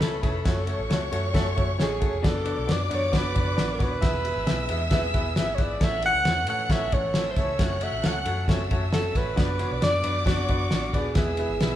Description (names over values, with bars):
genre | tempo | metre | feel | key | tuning
uptempo 1960s-style soul | 134 BPM | 4/4 | straight | unclear | A4 = 440 Hz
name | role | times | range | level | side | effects
breathy alto saxophone | melody | 0.0-11.8 s | F#4 to F#5 | -28 LUFS | equal | none
rich studio violin section | second line | 0.0-11.8 s | B4 to F#6 | -33 LUFS | equal | none
warm upright piano | accompaniment | 0.0-11.8 s | A2 to E5 | -32 LUFS | left 2 dB | none
percussive tonewheel organ | sustained chords | 0.0-11.8 s | D3 to C#5 | -39 LUFS | right 1 dB | none
vintage muted picked electric bass | bass | 0.0-11.8 s | D#1 to A2 | -30 LUFS | equal | none
cloth-damped thuddy drum kit | drums | 0.0-11.7 s | kick drum, ride cymbal, snare drum | -26 LUFS | equal | none
room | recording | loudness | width
moderate large studio reverb, RT60 1.0 s | band playing live in one room | -22 LUFS | side -12 dB against mid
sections
0.0-11.8 A section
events
none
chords
0.5 F#m; 2.2 Bm/F#; 4.0 E; 5.8 A; 7.6 F#m; 9.4 Bm/F#; 11.2 E